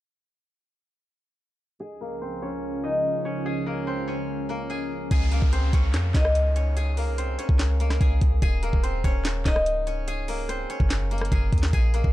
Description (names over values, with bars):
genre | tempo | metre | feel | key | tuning
hip hop, trap | 145 BPM | 4/4 | half-time | unclear | A4 = 440 Hz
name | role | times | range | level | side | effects
steel-string zither | melody | 1.8-12.1 s | Bb3 to Ab5 | -29 LUFS | left 1 dB | low-pass filter
warbly tape-like pad | sustained chords | 2.1-5.1 s | Db2 to Db4 | -32 LUFS | right 1 dB | chorus, built-in reverb, low-pass filter
clean 808-style bass | bass | 5.1-12.1 s | Db1 to F2 | -24 LUFS | equal | none
trap drum kit | drums | 5.1-12.1 s | handclaps, hi-hat, kick drum, rim click, snare drum | -24 LUFS | equal | vintage 12-bit sampler grit
downlifter | sound effects | 5.1-8.4 s | none | -40 LUFS | right 1 dB | none
room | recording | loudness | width
little or no reverb | dark, warm production | -22 LUFS | side -15 dB against mid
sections
1.8-5.1 A section; 5.1-12.1 B section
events
filter sweep 1.8-5.1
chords
1.8 Dbmaj7; 5.1 Dbmaj7(no3); 8.4 Ebm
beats
| 1.80 2.21 2.63 3.04 | 3.46 3.87 4.28 4.70 | 5.11 5.53 5.94 6.35 | 6.77 7.18 7.59 8.01 | 8.42 8.84 9.25 9.66 | 10.08 10.49 10.90 11.32 | 11.73